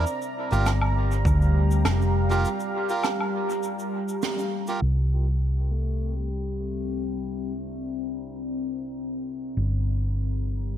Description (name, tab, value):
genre	ambient dub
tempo	101 BPM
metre	4/4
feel	swing 54% on 16ths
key	unclear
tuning	A4 = 441 Hz
part	deep dark ambient pad	sustained chords	0.0-10.8 s	G3 to Bb5	-30 LUFS	left 1 dB	chorus, built-in reverb
part	melodica	stabs	0.0-4.8 s	F4 to Bb4	-32 LUFS	right 3 dB	dub echo
part	hollow-body short-scale fingered electric bass	bass	0.0-10.8 s	F1 to D2	-23 LUFS	equal	none
part	cabasa, snare drum and woodblock	drums	0.1-4.8 s	none	-32 LUFS	right 3 dB	dub echo
part	electronic kick drum	drums	1.3-1.4 s	none	-26 LUFS	equal	overdrive
part	pedal steel guitar	arpeggios	5.7-7.5 s	G3 to A3	-37 LUFS	left 4 dB	low-pass filter, tape echo
room	light reverb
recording	low-pass filter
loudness	-23 LUFS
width	side -10 dB against mid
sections	0.0-4.8 A section; 4.8-10.8 B section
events	break 2.4-4.8; band accent 4.2; filter sweep on pedal steel guitar 4.8-10.8; filter sweep 4.8-10.8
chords	0.1 Gm7; 4.8 C9; 9.6 Gm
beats	| 0.07 0.66 1.25 1.85 | 2.44 3.04 3.63 4.22 | 4.82 5.41 6.01 6.60 | 7.19 7.79 8.38 8.98 | 9.57 10.16 10.76